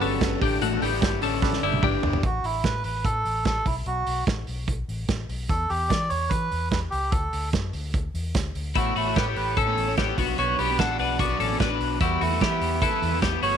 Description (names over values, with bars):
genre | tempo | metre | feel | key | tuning
jangly indie pop | 148 BPM | 4/4 | straight | unclear | A4 = 439 Hz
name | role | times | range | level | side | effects
overdriven semi-hollow guitar | accompaniment | 0.0-2.2, 8.8-13.6 s | A2 to C#5 | -31 LUFS | right 11 dB | none
reed electric piano | accompaniment | 0.0-2.3 s | D4 to B4 | -31 LUFS | right 12 dB | phaser
twelve-string electric guitar | arpeggios | 0.0-2.2, 8.8-13.6 s | G3 to B4 | -26 LUFS | left 15 dB | none
vintage muted fingered electric bass | bass | 0.0-13.6 s | F#1 to E3 | -30 LUFS | left 1 dB | none
loose indie drum kit | drums | 0.0-13.5 s | hi-hat, kick drum, snare drum, toms | -27 LUFS | right 2 dB | none
melodica | melody | 2.3-13.6 s | E4 to F#5 | -27 LUFS | right 3 dB | slapback echo
room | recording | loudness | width
light reverb, studio ambience | 1960s-style stereo with parts hard left and right | -22 LUFS | side -8 dB against mid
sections
0.0-2.2 A section; 2.2-13.6 B section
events
drum fill 1.4-2.2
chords
0.4 A7sus4; 2.2 Asus2; 3.7 B5; 5.5 E5; 7.1 D5; 8.8 Aadd9; 10.2 Bm; 12.0 Em